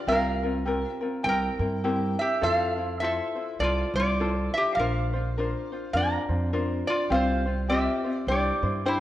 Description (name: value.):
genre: Hawaiian.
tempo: 103 BPM.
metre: 4/4.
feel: swing 60% on 8ths.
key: unclear.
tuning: A4 = 440 Hz.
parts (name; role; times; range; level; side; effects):
ukulele; accompaniment; 0.0-9.0 s; C4 to C5; -30 LUFS; left 2 dB; none.
metal-body resonator slide guitar; melody; 0.1-9.0 s; E4 to Bb5; -27 LUFS; right 1 dB; none.
upright bass; bass; 0.1-9.0 s; Bb1 to G2; -29 LUFS; right 1 dB; none.
room: moderate recital hall reverb, RT60 1.4 s.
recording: worn, warbling old tape, cassette tape, warbly pitch drift.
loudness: -24 LUFS.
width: side -13 dB against mid.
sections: 0.0-9.0 A section.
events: none.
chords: 0.1 C7sus4; 1.2 C7; 2.4 Fmaj7; 4.8 Bbadd9; 7.1 Csus4; 8.3 Cadd9.